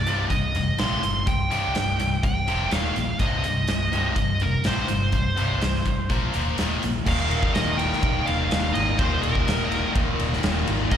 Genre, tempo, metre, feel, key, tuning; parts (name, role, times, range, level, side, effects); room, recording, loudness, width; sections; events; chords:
hard rock; 124 BPM; 4/4; straight; A4 = 439 Hz
dark smooth lead guitar; melody; 0.0-11.0 s; Bb4 to C6; -27 LUFS; right 2 dB; overdrive, slapback echo
heavy high-gain guitar; riff; 0.0-11.0 s; C2 to Bb3; -31 LUFS; right 10 dB; distortion, slapback echo
tight distorted guitar; riff; 0.0-11.0 s; C2 to Bb3; -28 LUFS; left 9 dB; distortion, slapback echo
picked electric bass; bass; 0.1-11.0 s; C1 to Bb1; -27 LUFS; equal
big rock drum kit; drums; 0.1-11.0 s; crash cymbal, hi-hat, kick drum, ride cymbal, snare drum; -26 LUFS; equal
cranked stack guitar; riff; 7.0-11.0 s; Eb2 to Ab3; -31 LUFS; equal; overdrive, slapback echo
overdriven tonewheel organ; sustained chords; 7.1-11.0 s; Ab3 to F5; -35 LUFS; right 1 dB; slow rotary speaker, chorus vibrato
small room reverb; live gig heard through the venue's PA, recital hall reverb; -21 LUFS; side -9 dB against mid
0.0-7.1 A section; 7.1-11.0 B section
0.0 Cm; 2.7 Eb5; 3.2 Cm; 6.1 Bb5; 6.6 Eb5